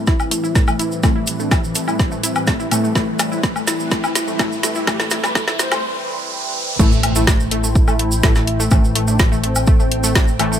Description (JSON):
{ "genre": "melodic techno", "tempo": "125 BPM", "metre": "4/4", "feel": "straight", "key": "A minor", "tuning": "A4 = 440 Hz", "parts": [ { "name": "expressive synth lead", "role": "melody", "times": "0.0-10.5 s", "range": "E3 to C5", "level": "-25 LUFS", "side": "equal", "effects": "ensemble chorus, sidechain pumping, digital delay" }, { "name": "lush unison pad", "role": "sustained chords", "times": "0.0-10.6 s", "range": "A2 to G5", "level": "-29 LUFS", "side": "equal", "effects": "chorus, phaser, sidechain pumping" }, { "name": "synth brass stab", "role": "stabs", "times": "0.0-10.6 s", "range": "A2 to A3", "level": "-25 LUFS", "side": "left 2 dB", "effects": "chorus, vintage 12-bit sampler grit, sidechain pumping, digital delay" }, { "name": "swarming drone", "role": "drone", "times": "0.3-5.8 s", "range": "A2 to E3", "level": "-34 LUFS", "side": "right 1 dB", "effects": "none" }, { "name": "riser and impact", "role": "sound effects", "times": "2.2-8.7 s", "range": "none", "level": "-30 LUFS", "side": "right 1 dB", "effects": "none" }, { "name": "wide unison pluck", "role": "arpeggios", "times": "0.1-10.6 s", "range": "A3 to E4", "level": "-26 LUFS", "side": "equal", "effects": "sidechain pumping, digital delay" }, { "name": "deep house drum kit", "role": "drums", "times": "0.1-10.5 s", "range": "crash cymbal, hi-hat, snare drum, woodblock", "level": "-20 LUFS", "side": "left 1 dB", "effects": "high-pass filter on snare, sidechain pumping on hats, high-pass filter on hats, sidechain pumping on perc, high-pass filter on perc, sidechain pumping on cymbals, high-pass filter on cymbals, high-pass filter on room" }, { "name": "electronic kick drum", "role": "drums", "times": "0.1-10.3 s", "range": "none", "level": "-16 LUFS", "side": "equal", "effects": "overdrive" }, { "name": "tube shaker", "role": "percussion", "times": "0.1-10.6 s", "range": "none", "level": "-26 LUFS", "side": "right 4 dB", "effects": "none" }, { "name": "plucky analog bass", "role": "bass", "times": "6.8-10.6 s", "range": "A1", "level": "-21 LUFS", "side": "equal", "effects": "sidechain pumping" } ], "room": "light reverb, digital ambience", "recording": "high-pass filter", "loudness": "-15 LUFS", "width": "side -10 dB against mid", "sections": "0.0-6.8 A section; 6.8-10.6 B section", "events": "build-up 0.0-6.8; drum fill 0.0-5.8; filter sweep on analog synth lead 0.0-6.8; filter sweep on synth stab 0.0-6.8; filter sweep 0.0-6.8; riser 2.2-6.8; break 5.8-6.8; drop 6.8-10.6; impact 6.8-8.7", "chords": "0.0 Am7" }